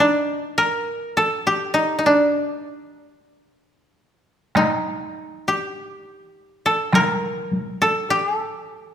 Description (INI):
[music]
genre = japanese traditional, Japanese chamber music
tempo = 48-52 BPM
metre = 2/4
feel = rubato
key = D miyako bushi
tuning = A4 = 440 Hz
[part]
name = koto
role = melody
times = 0.0-8.9 s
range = D4 to Bb4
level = -19 LUFS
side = equal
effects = none
[part]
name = taiko ensemble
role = percussion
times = 4.6-7.8 s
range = none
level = -22 LUFS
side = equal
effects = none
[sound]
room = moderate scoring stage reverb, RT60 1.6 s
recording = minimal, uncompressed stereo recording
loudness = -19 LUFS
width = side -9 dB against mid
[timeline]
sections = 0.0-4.6 A section; 4.6-8.9 B section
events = none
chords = none